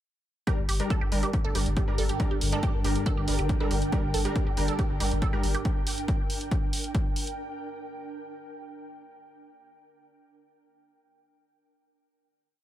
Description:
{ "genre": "driving peak-time techno", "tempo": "139 BPM", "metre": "4/4", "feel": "straight", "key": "G minor", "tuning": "A4 = 440 Hz", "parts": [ { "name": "resonant blip pluck", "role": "riff", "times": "0.5-5.6 s", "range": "G4 to A4", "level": "-35 LUFS", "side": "right 5 dB", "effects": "phaser, cassette tape, sidechain pumping, dub echo" }, { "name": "rave stab", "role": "stabs", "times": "0.5-5.5 s", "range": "G3 to Bb4", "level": "-34 LUFS", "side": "left 1 dB", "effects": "chorus, built-in reverb, sidechain pumping, dub echo" }, { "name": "analog drone", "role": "drone", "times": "1.3-5.7 s", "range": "G2 to D3", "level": "-36 LUFS", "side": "equal", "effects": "chorus, sidechain pumping" }, { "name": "electronic hi-hat", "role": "drums", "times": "0.5-7.4 s", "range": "none", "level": "-35 LUFS", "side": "right 1 dB", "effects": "none" }, { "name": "electronic kick drum", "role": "drums", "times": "0.5-7.0 s", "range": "none", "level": "-28 LUFS", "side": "equal", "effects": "none" }, { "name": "ethereal airy pad", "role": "texture", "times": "1.0-7.4 s", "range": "D4 to G5", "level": "-36 LUFS", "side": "right 2 dB", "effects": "ensemble chorus, built-in reverb, sidechain pumping" }, { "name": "saturated sub bass", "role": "bass", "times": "0.6-5.5 s", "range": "G1", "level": "-30 LUFS", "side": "equal", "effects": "overdrive, sidechain pumping, low-pass filter" } ], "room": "digital ambience", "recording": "none", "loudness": "-25 LUFS", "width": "side -12 dB against mid", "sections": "0.5-7.4 groove", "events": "none", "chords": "0.5 Gm" }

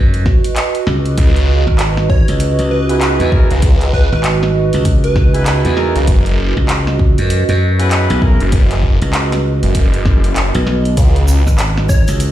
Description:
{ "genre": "glitch hop", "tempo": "98 BPM", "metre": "4/4", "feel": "swing 61% on 16ths", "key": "C# dorian", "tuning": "A4 = 439 Hz", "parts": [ { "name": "glassy slap bass", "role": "bass", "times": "0.0-12.3 s", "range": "G#1 to F#2", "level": "-15 LUFS", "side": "equal", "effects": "tube saturation" }, { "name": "warbly tape-like pad", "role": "texture", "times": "0.0-12.3 s", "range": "C#4 to D#5", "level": "-20 LUFS", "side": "right 5 dB", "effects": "chorus, built-in reverb, sidechain pumping" }, { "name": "pop drum kit", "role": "drums", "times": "0.1-12.3 s", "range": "handclaps, hi-hat, snare drum", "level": "-22 LUFS", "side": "equal", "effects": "none" }, { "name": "electronic kick drum", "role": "drums", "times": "0.3-12.0 s", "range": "none", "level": "-13 LUFS", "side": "equal", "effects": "none" }, { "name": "phased detuned saw bass", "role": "bass", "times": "1.2-11.4 s", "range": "F#1 to C#2", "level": "-13 LUFS", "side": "equal", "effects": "phaser" }, { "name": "plucky unison lead", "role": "melody", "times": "2.1-5.5, 11.9-12.1 s", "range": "B4 to C#5", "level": "-23 LUFS", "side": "equal", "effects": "phaser, digital delay" }, { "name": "clear horn section", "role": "stabs", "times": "2.9-8.4 s", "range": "A#3 to B4", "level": "-22 LUFS", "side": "left 1 dB", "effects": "vintage 12-bit sampler grit, sidechain pumping, digital delay" }, { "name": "egg shaker", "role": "percussion", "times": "11.0-12.3 s", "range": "none", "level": "-29 LUFS", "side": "right 2 dB", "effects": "none" } ], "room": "little or no reverb", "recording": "played on a big sound system in a bare room, stone room reverb", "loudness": "-11 LUFS", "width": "side -12 dB against mid", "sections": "0.0-12.3 A section", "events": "none", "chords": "0.0 F#sus4; 1.2 C#m7; 6.1 F#7sus4; 11.0 C#7(no3)" }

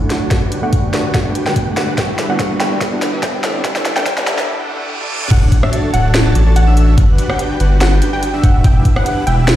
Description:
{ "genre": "future bass", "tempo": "144 BPM", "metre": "4/4", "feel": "swing 53% on 16ths, half-time", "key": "D major", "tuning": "A4 = 441 Hz", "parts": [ { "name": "wide unison pluck", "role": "melody", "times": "0.0-9.5 s", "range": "E5 to G5", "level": "-23 LUFS", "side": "equal", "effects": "sidechain pumping, dub echo" }, { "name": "barky tine electric piano", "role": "accompaniment", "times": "0.0-4.4 s", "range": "F#3 to F#4", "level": "-23 LUFS", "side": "right 2 dB", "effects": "analog chorus, sidechain pumping, dub echo" }, { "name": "ethereal airy pad", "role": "sustained chords", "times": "0.0-4.5 s", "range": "D3 to C#5", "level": "-29 LUFS", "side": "left 1 dB", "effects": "ensemble chorus, built-in reverb, sidechain pumping" }, { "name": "dense compressed supersaw", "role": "riff", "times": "0.0-9.6 s", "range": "D4 to A5", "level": "-21 LUFS", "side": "right 1 dB", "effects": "sidechain pumping, low-pass filter" }, { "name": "riser, reverse cymbal and impact", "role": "sound effects", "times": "0.4-7.0 s", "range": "none", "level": "-25 LUFS", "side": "equal", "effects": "none" }, { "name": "trap drum kit", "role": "drums", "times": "0.1-9.6 s", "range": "crash cymbal, hi-hat, rim click, snare drum, toms", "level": "-20 LUFS", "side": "equal", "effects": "overdrive, high-pass filter on snare, high-pass filter on hats, high-pass filter on toms, high-pass filter on cymbals" }, { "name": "electronic kick drum", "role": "drums", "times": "0.3-8.9 s", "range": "none", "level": "-13 LUFS", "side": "equal", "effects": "none" }, { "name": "airy dreamy lead", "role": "arpeggios", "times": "5.3-9.6 s", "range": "E6 to A6", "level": "-30 LUFS", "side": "equal", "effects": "chorus, sidechain pumping, dub echo" }, { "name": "concert harp", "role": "arpeggios", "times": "5.3-9.6 s", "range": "B3 to C#5", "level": "-28 LUFS", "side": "right 2 dB", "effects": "vintage 12-bit sampler grit, sidechain pumping, dub echo" }, { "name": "saturated sub bass", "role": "bass", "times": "5.3-9.6 s", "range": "D1 to A1", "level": "-12 LUFS", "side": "equal", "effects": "sidechain pumping" } ], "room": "light reverb, digital ambience", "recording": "played on a big sound system in a bare room, large studio reverb, high-pass filter", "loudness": "-12 LUFS", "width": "side -13 dB against mid", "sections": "0.0-5.3 A section; 5.3-9.6 B section", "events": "build-up 0.0-5.3; drum fill 0.0-4.5, 4.9-5.3; filter sweep on supersaw synth 0.0-5.3; filter sweep on synth pluck 0.0-5.3; filter sweep 0.0-5.3; riser 0.4-4.5; break 4.5-5.3; reverse cymbal 4.5-5.3; drop 5.3-9.6; impact 5.3-7.0", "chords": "0.3 Gmaj7; 2.0 Em7; 3.4 A7sus4; 5.3 Dmaj7; 7.0 Gmaj7; 8.6 Em7" }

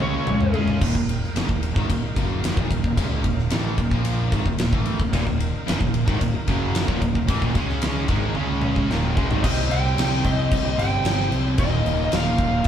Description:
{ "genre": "hard rock", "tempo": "111 BPM", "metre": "4/4", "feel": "straight", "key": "Eb mixolydian", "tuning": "A4 = 440 Hz", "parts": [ { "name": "lead guitar through a small cranked amp", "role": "melody", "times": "0.0-0.5, 9.4-12.7 s", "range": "Db5 to G5", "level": "-26 LUFS", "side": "equal", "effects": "overdrive" }, { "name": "bright tonewheel organ", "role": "sustained chords", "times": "0.0-12.7 s", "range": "C4 to F5", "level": "-36 LUFS", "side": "equal", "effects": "slow rotary speaker" }, { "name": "cranked stack guitar", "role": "riff", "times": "0.0-12.7 s", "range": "Eb2 to Db4", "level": "-29 LUFS", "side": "left 4 dB", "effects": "overdrive" }, { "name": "cranked stack guitar", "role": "riff", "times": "0.0-12.7 s", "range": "Eb2 to Db4", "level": "-28 LUFS", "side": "right 5 dB", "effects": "overdrive" }, { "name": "distorted electric guitar", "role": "riff", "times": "0.0-0.8, 5.1-9.4 s", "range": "Eb2 to Ab4", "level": "-29 LUFS", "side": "equal", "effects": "overdrive" }, { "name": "fuzz fingered electric bass", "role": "bass", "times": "0.0-12.7 s", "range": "Eb1 to Db2", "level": "-26 LUFS", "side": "equal", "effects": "overdrive" }, { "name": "huge arena drum kit", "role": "drums", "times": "0.0-12.7 s", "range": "crash cymbal, kick drum, ride cymbal, snare drum, toms", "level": "-23 LUFS", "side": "equal", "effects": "none" } ], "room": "moderate stone room reverb, RT60 1.4 s", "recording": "band playing live in one room", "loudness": "-19 LUFS", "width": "side -9 dB against mid", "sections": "0.8-9.4 A section; 9.4-12.7 B section", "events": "drum fill 0.0-0.8, 8.4-9.4", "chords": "0.0 Db; 0.8 Eb5; 7.6 Db5; 8.1 Eb5; 8.4 Db5; 8.9 Eb5; 9.4 Cm; 11.6 Eb5" }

